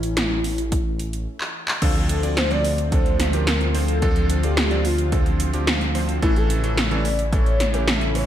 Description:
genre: synthwave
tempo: 109 BPM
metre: 4/4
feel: straight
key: D minor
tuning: A4 = 441 Hz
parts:
  - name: warm velvety synth lead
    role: melody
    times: 0.0-8.3 s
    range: E4 to D5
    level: -27 LUFS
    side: left 1 dB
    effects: chorus, ping-pong delay
  - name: lush unison pad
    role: sustained chords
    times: 0.0-8.3 s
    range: C#3 to F4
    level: -30 LUFS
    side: equal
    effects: chorus, sidechain pumping
  - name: dark detuned saw bass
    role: bass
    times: 0.0-8.3 s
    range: A1 to D2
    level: -23 LUFS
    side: equal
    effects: tube saturation
  - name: 80s electronic pad drums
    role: drums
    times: 0.0-8.3 s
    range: crash cymbal, handclaps, hi-hat, snare drum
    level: -24 LUFS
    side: equal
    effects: none
  - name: electronic kick drum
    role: drums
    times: 0.7-7.4 s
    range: none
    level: -22 LUFS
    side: equal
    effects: none
  - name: bright electric grand piano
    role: stabs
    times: 1.8-8.3 s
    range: E3 to D5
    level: -28 LUFS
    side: right 1 dB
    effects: ping-pong delay
room: light reverb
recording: bright 1980s-style digital production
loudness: -18 LUFS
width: side -11 dB against mid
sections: 0.0-1.8 A section; 1.8-8.3 B section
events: drum fill 1.4-1.8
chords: 0.0 A; 1.8 Dm7; 6.2 A

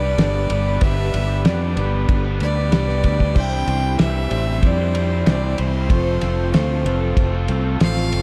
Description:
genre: folk rock and heartland rock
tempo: 94 BPM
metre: 4/4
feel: straight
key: G mixolydian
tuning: A4 = 439 Hz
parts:
  - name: rich fiddle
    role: melody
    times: 0.0-8.2 s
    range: C5 to G5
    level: -28 LUFS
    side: equal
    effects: none
  - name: picked twelve-string acoustic guitar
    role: accompaniment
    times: 0.0-8.2 s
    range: G2 to A4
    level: -32 LUFS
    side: equal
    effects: none
  - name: tonewheel organ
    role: sustained chords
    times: 0.0-8.2 s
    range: D4 to D5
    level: -38 LUFS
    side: equal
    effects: none
  - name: raw garage guitar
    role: riff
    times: 0.0-8.2 s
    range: C3 to C5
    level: -29 LUFS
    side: equal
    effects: overdrive
  - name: fingered electric bass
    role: bass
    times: 0.0-8.2 s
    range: F1 to F2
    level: -23 LUFS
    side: equal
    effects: none
  - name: clear grand piano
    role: accompaniment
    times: 0.2-8.2 s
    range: B3 to C5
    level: -36 LUFS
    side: equal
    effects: none
  - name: damped 70s drum kit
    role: drums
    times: 0.2-8.2 s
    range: crash cymbal, kick drum, ride cymbal, snare drum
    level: -23 LUFS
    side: equal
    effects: none
room: small room ambience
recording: dark, warm production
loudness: -19 LUFS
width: mono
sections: 0.0-8.2 A section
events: none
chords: 0.0 G; 3.4 Cadd9; 5.9 F

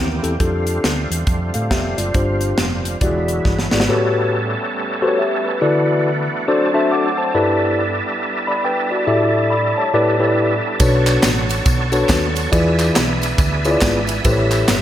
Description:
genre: uptempo gospel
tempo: 139 BPM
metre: 4/4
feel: swing 61% on 8ths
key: unclear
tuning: A4 = 440 Hz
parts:
  - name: mellow tine electric piano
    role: accompaniment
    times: 0.0-14.8 s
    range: G2 to D6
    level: -18 LUFS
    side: left 2 dB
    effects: slapback echo
  - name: overdriven tonewheel organ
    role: sustained chords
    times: 0.0-14.8 s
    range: D3 to E5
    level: -22 LUFS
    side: right 2 dB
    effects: slow rotary speaker, chorus vibrato
  - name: hollow-body short-scale fingered electric bass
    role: bass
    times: 0.0-3.9, 10.8-14.8 s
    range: E1 to A2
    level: -21 LUFS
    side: right 1 dB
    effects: none
  - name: crisp fusion drum kit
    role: drums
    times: 0.2-3.9, 10.8-14.8 s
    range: hi-hat, kick drum, ride cymbal, snare drum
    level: -19 LUFS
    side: equal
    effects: none
  - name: tambourine and handclaps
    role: percussion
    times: 10.8-14.8 s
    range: none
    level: -26 LUFS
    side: equal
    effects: none
room: moderate lush hall reverb, RT60 1.6 s, small room ambience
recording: big arena sound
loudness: -15 LUFS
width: side -11 dB against mid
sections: 0.0-3.9 A section; 3.9-14.8 B section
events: drum fill 3.5-3.9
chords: 0.4 F69; 2.1 G7sus4; 3.0 E9; 3.9 A13; 5.6 D69; 6.5 D7/F#; 7.3 G69; 9.1 A7sus4; 9.9 A9sus4; 10.8 Bm9; 12.5 E7b9; 14.2 A9

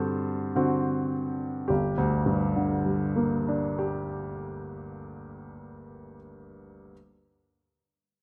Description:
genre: classical, romantic character piece for solo piano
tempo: 49-61 BPM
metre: 3/4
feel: rubato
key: G minor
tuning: A4 = 440 Hz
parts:
  - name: clear grand piano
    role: solo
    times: 0.0-6.9 s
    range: G1 to C5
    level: -30 LUFS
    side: equal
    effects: none
room: moderate scoring stage reverb, RT60 2.0 s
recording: close, detailed microphones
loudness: -28 LUFS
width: mono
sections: 0.0-1.7 A section; 1.7-4.7 B section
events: slowing down 0.0-1.7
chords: 0.0 D7/G; 1.7 Gm

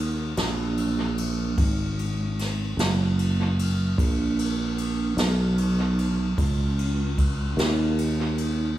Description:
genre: slow blues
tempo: 50 BPM (dotted quarters)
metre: 12/8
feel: straight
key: Eb minor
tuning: A4 = 440 Hz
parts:
  - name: sustaining fretless electric bass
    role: bass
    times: 0.0-8.7 s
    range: Gb1 to Eb2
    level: -23 LUFS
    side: right 1 dB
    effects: analog chorus
  - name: jazz brush drum kit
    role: drums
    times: 0.4-8.6 s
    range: kick drum, ride cymbal, snare drum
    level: -28 LUFS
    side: equal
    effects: analog delay
room: little or no reverb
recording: echo-heavy mix, studio reverb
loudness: -22 LUFS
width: side -13 dB against mid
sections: 0.0-8.8 A section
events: none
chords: none

